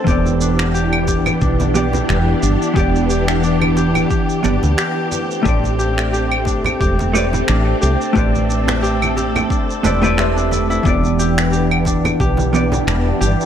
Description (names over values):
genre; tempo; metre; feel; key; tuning
sunset chillout; 89 BPM; 4/4; swing 55% on 16ths; E minor; A4 = 439 Hz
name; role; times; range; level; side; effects
vintage hollow-body jazz guitar; accompaniment; 0.0-12.7 s; E3 to E5; -20 LUFS; equal; auto-pan, low-pass filter, digital delay
soft string machine; sustained chords; 0.0-13.5 s; E3 to A4; -21 LUFS; equal; ensemble chorus
Celtic harp; arpeggios; 0.0-13.5 s; D4 to D5; -23 LUFS; left 2 dB; digital delay
woody fretless electric bass; bass; 0.1-13.3 s; E1 to D2; -19 LUFS; equal; none
electronic kick drum; drums; 0.1-12.4 s; none; -20 LUFS; equal; none
electronic shaker, finger snaps and claves; drums; 0.1-13.5 s; none; -24 LUFS; right 1 dB; none
congas; percussion; 0.3-12.8 s; none; -27 LUFS; right 2 dB; none
room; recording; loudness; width
light reverb; none; -14 LUFS; side -9 dB against mid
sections
0.0-13.5 A section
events
none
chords
0.1 Em7